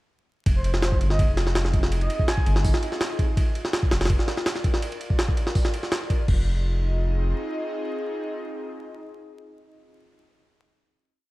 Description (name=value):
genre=drum and bass, jungle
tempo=165 BPM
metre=4/4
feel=straight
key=F dorian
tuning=A4 = 444 Hz
part: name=airy breathy pad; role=sustained chords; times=0.7-9.9 s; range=C4 to Eb5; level=-33 LUFS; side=equal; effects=chorus, vintage 12-bit sampler grit
part: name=saturated sub bass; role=bass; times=0.5-7.3 s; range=F1 to G1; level=-23 LUFS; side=equal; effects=none
part: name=jungle sampler-style drum kit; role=drums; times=0.5-6.4 s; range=crash cymbal, hi-hat, kick drum, ride cymbal, snare drum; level=-22 LUFS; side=equal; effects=none
part: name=breathy flute-like synth lead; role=melody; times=0.6-2.6 s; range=C5 to Ab5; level=-33 LUFS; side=right 1 dB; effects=chorus, dub echo
room=little or no reverb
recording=dark, warm production, vinyl crackle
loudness=-21 LUFS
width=side -18 dB against mid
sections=0.5-6.3 drop; 6.3-9.2 final chord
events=drop 0.5-6.3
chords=0.5 Fm7; 3.4 Bb/F; 6.3 Fm7